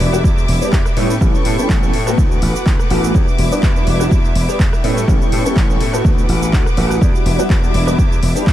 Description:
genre	filtered disco house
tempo	124 BPM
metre	4/4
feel	swing 54% on 16ths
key	E dorian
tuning	A4 = 443 Hz
part	warm grand piano	accompaniment	0.0-8.5 s	G3 to G4	-20 LUFS	equal	phaser, sidechain pumping
part	clear symphonic violin section	sustained chords	0.0-8.5 s	E4 to D6	-24 LUFS	left 1 dB	sidechain pumping
part	gritty slap bass	bass	0.0-8.5 s	E1 to A2	-19 LUFS	equal	overdrive, sidechain pumping
part	punchy analog drum machine	drums	0.0-8.5 s	cabasa, handclaps, hi-hat, rim click	-26 LUFS	equal	sidechain pumping on cymbals, sidechain pumping on perc, sidechain pumping on hats
part	electronic kick drum	drums	0.2-8.5 s	none	-15 LUFS	equal	overdrive
room	light reverb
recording	none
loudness	-12 LUFS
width	side -12 dB against mid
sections	0.0-8.5 A section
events	none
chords	0.0 Em7; 1.0 A7; 2.2 D6; 3.1 Em7; 4.8 A7; 6.0 D6; 7.0 Em7

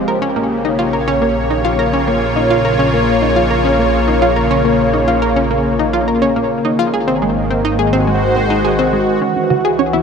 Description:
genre	ambient, sequencer-driven space music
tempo	105 BPM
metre	4/4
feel	straight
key	Bb dorian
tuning	A4 = 439 Hz
part	lush unison pad	sustained chords	0.0-10.0 s	Db3 to Db5	-14 LUFS	equal	chorus
part	fat analog bass	bass	0.0-10.0 s	Ab1 to C#2	-22 LUFS	equal	none
part	analog pluck	riff	0.1-10.0 s	Ab3 to C#5	-18 LUFS	equal	chorus, tape echo
part	soft round pluck	arpeggios	9.4-10.0 s	C#3 to C#4	-20 LUFS	right 6 dB	chorus, auto-pan, tape echo
room	wet plate reverb, RT60 2.7 s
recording	none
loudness	-12 LUFS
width	side -6 dB against mid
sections	0.0-9.2 A section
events	none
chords	0.1 Bbm; 6.9 Ab7; 9.2 C#m7

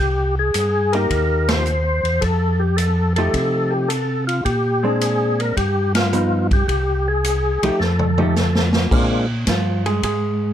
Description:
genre	soul jazz organ trio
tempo	108 BPM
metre	4/4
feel	swing 69% on 8ths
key	Bb mixolydian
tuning	A4 = 441 Hz
part	percussive tonewheel organ	melody	0.0-9.3 s	Ab3 to C5	-21 LUFS	left 2 dB	slow rotary speaker, overdrive, chorus vibrato
part	mellow tonewheel organ	bass	0.0-10.5 s	C2 to C3	-20 LUFS	equal	chorus vibrato, slow rotary speaker
part	swinging big-band drum kit	drums	0.5-10.2 s	crash cymbal, hi-hat, kick drum, ride cymbal, snare drum, toms	-24 LUFS	equal	none
part	vintage hollow-body jazz guitar	accompaniment	0.9-10.5 s	F3 to Ab4	-22 LUFS	right 2 dB	none
room	light reverb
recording	none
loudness	-16 LUFS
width	side -10 dB against mid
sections	0.0-8.9 A section; 8.9-10.5 B section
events	band accent 1.4, 5.8; drum fill 7.8-8.9; hollow-body jazz guitar solo 8.9-10.5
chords	0.0 Cm7; 2.2 F9; 4.5 Bb9; 5.6 Gaug7; 6.7 Cm; 7.8 F9; 8.9 Bb9

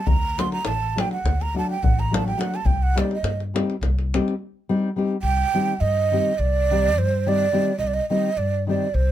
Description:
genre	balkan folk, Balkan wedding band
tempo	210 BPM (eighths)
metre	9/8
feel	straight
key	C dorian sharp4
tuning	A4 = 440 Hz
part	breathy ney	melody	0.0-9.1 s	C5 to C6	-24 LUFS	right 6 dB	none
part	upright bass	bass	0.1-9.1 s	A1 to G2	-24 LUFS	left 1 dB	none
part	davul	percussion	0.1-4.3 s	none	-24 LUFS	left 1 dB	none
part	nylon-string guitar	accompaniment	0.4-8.9 s	Eb3 to G4	-24 LUFS	left 3 dB	none
room	little or no reverb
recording	close, detailed microphones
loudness	-20 LUFS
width	side -12 dB against mid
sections	0.0-5.2 A section; 5.2-9.1 B section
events	ney solo 0.0-5.2; break 4.4-5.2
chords	0.1 D; 2.7 Cm

